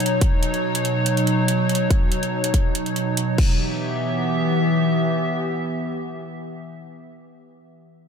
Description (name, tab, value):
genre	heavy wobble dubstep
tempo	142 BPM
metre	4/4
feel	swing 53% on 16ths, half-time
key	unclear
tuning	A4 = 439 Hz
part	evolving wavetable pad	sustained chords	0.0-6.5 s	B2 to E5	-21 LUFS	equal	chorus, built-in reverb, sidechain pumping
part	dubstep drum kit	drums	0.0-3.5 s	crash cymbal, hi-hat	-28 LUFS	right 2 dB	none
part	electronic kick drum	drums	0.2-3.5 s	none	-18 LUFS	equal	none
room	light reverb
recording	none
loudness	-19 LUFS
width	side -7 dB against mid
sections	0.0-3.6 A section; 3.6-7.0 B section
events	none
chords	0.0 Badd9; 3.4 Em